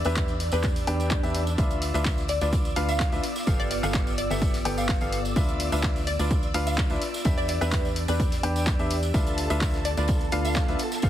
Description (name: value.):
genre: piano house.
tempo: 127 BPM.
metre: 4/4.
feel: straight.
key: D dorian.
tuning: A4 = 441 Hz.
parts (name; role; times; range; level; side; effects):
string machine, violins; sustained chords; 0.0-11.1 s; A4 to E6; -37 LUFS; equal; ensemble chorus, sidechain pumping.
bright baby grand piano; riff; 0.0-11.1 s; B3 to G5; -30 LUFS; left 1 dB; sidechain pumping.
organ-like FM bass; bass; 0.0-11.1 s; G1 to E2; -29 LUFS; equal; sidechain pumping.
tambourine; percussion; 0.0-11.1 s; none; -40 LUFS; right 2 dB; none.
warbly tape-like pad; texture; 0.0-11.1 s; B3 to D5; -37 LUFS; right 1 dB; chorus, built-in reverb, sidechain pumping.
hollow square pluck; melody; 0.1-10.6 s; B4 to F5; -33 LUFS; equal; lush chorus, ping-pong delay.
punchy analog drum machine; drums; 0.1-11.1 s; handclaps, hi-hat; -33 LUFS; equal; none.
electronic kick drum; drums; 0.2-11.1 s; none; -26 LUFS; equal; none.
swell; sound effects; 0.8-1.6 s; none; -36 LUFS; right 1 dB; none.
damped 70s drum kit; drums; 1.6-11.1 s; hi-hat, snare drum; -42 LUFS; left 2 dB; none.
room: light reverb.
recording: heavily compressed radio sound, multiband compression.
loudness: -23 LUFS.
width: side -12 dB against mid.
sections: 0.0-11.1 A section.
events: swell 0.8-1.6.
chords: 0.0 Em7; 1.6 Dm69; 3.2 G9; 5.4 Dm69; 7.0 Em7; 9.1 Dm69.